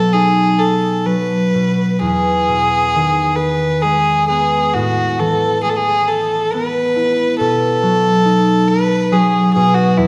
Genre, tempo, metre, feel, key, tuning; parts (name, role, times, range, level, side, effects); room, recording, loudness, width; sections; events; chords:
celtic folk, Celtic slow air; 68 BPM; 3/4; uneven beats, rubato; A4 = 439 Hz
warm fiddle; melody; 0.0-10.1 s; E4 to B4; -18 LUFS; equal
concert harp; accompaniment; 0.0-10.1 s; E2 to F#4; -19 LUFS; equal
wet scoring stage reverb, RT60 1.8 s; recorded in a church or concert hall; -15 LUFS; mono
0.0-10.1 A section
0.0 B; 2.0 Emaj7; 4.7 Asus2; 7.4 B7